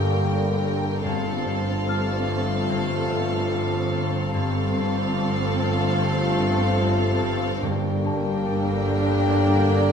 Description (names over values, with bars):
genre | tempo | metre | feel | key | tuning
cinematic | 73 BPM | 4/4 | straight | unclear | A4 = 440 Hz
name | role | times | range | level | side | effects
warm symphonic violin section | melody | 0.0-9.9 s | F5 to G5 | -31 LUFS | left 3 dB | none
warm chamber violin section | second line | 0.0-9.9 s | A4 to Bb4 | -31 LUFS | left 3 dB | none
dark symphonic viola section | accompaniment | 0.0-9.9 s | D3 to D4 | -30 LUFS | equal | none
glass harmonica | sustained chords | 0.0-9.9 s | A4 to G5 | -36 LUFS | left 1 dB | none
mellow French horn section | sustained chords | 0.0-9.9 s | D3 to G4 | -31 LUFS | left 2 dB | none
warm trombone section | sustained chords | 0.0-9.9 s | D3 to Bb3 | -31 LUFS | right 2 dB | none
concert harp | riff | 0.0-9.9 s | G2 to G3 | -29 LUFS | left 4 dB | none
dark symphonic double bass section | bass | 0.0-9.9 s | G1 | -28 LUFS | right 3 dB | none
warm symphonic cello section | bass | 0.0-9.9 s | G2 | -30 LUFS | right 2 dB | none
overtone-sweeping drone | drone | 0.0-9.9 s | G1 | -32 LUFS | equal | chorus, built-in reverb, phaser
small celesta | texture | 0.0-9.9 s | A5 to F6 | -36 LUFS | left 5 dB | none
timpani | percussion | 1.1-2.2, 7.6-8.8 s | G2 | -34 LUFS | right 1 dB | none
room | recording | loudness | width
wet recital hall reverb, RT60 1.7 s | recorded in a church or concert hall | -21 LUFS | side -7 dB against mid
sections
0.0-9.9 A section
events
none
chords
0.0 Gm; 1.1 F/G; 7.6 Gm